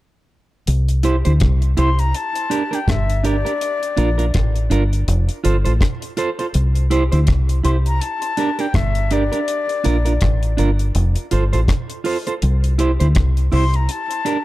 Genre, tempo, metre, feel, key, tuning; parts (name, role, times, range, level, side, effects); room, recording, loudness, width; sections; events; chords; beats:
roots reggae; 82 BPM; 4/4; swing 58% on 16ths; C mixolydian; A4 = 441 Hz
deep dub fingered electric bass; bass; 0.7-13.9 s; F1 to D2; -16 LUFS; equal
deep reggae drum kit; drums; 0.7-14.4 s; hi-hat, kick drum, rim click; -22 LUFS; equal
clean electric guitar; accompaniment; 1.0-14.4 s; D4 to C5; -23 LUFS; right 4 dB; dub echo
breathy concert flute; melody; 1.8-14.4 s; D5 to C6; -23 LUFS; left 4 dB; dub echo
little or no reverb; dark, warm production; -16 LUFS; side -17 dB against mid
0.7-14.4 A section
0.7 C; 2.1 Gm; 3.6 Bb; 5.1 F; 6.5 C; 8.0 Gm; 9.5 Bb; 10.9 F; 12.4 C; 13.9 Gm
| 0.67 1.41 2.14 2.87 | 3.61 4.34 5.08 5.81 | 6.54 7.28 8.01 8.75 | 9.48 10.21 10.95 11.68 | 12.42 13.15 13.89